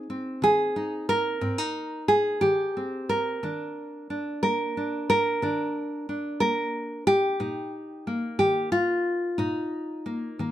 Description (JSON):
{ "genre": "folk, solo fingerstyle acoustic guitar", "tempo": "60 BPM (dotted quarters)", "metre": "6/8", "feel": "straight", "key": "unclear", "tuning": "A4 = 440 Hz", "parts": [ { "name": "nylon-string guitar", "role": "solo", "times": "0.0-10.5 s", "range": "Ab2 to Bb4", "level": "-24 LUFS", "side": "equal", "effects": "none" } ], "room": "light reverb", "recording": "none", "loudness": "-24 LUFS", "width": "side -12 dB against mid", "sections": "0.0-10.5 A section", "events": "none", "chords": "0.0 Abmaj7; 3.4 Eb5; 7.4 Bbsus4" }